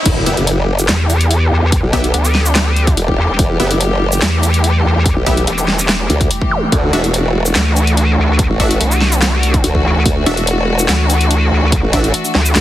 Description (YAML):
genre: heavy wobble dubstep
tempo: 144 BPM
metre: 4/4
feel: half-time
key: E minor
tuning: A4 = 438 Hz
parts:
  - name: riser, impact, zap and swell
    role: sound effects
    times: 0.0-1.7, 6.5-6.6, 12.6 s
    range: none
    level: -21 LUFS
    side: equal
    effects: none
  - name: rich chamber string section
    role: sustained chords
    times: 0.1-12.6 s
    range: E3 to G4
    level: -20 LUFS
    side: left 1 dB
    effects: sidechain pumping
  - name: formant-sweep wobble bass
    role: bass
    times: 0.1-12.6 s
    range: E1 to D2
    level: -15 LUFS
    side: equal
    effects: chorus, overdrive
  - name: dubstep drum kit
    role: drums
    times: 0.1-12.6 s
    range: crash cymbal, handclaps, hi-hat, shaker, snare drum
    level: -17 LUFS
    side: equal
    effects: none
  - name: electronic kick drum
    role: drums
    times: 0.1-12.0 s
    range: none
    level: -17 LUFS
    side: equal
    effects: none
  - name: supersaw stab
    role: stabs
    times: 0.3-12.0 s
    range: B3 to E5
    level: -21 LUFS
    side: equal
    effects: digital delay
  - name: vowel-sweep wobble bass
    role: bass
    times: 0.9-12.5 s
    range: E1 to E2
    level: -13 LUFS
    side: equal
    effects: chorus, overdrive
room: light reverb, digital ambience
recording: heavily compressed radio sound, multiband compression, high-pass filter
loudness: -11 LUFS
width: side -13 dB against mid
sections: 0.1-12.6 A section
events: drop 0.1-12.6; impact 0.1-1.7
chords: 0.1 Em; 6.7 Dadd9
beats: | 0.06 0.47 0.89 1.31 | 1.72 2.14 2.56 2.97 | 3.39 3.81 4.22 4.64 | 5.06 5.47 5.89 6.31 | 6.72 7.14 7.56 7.97 | 8.39 8.81 9.22 9.64 | 10.06 10.47 10.89 11.31 | 11.72 12.14 12.56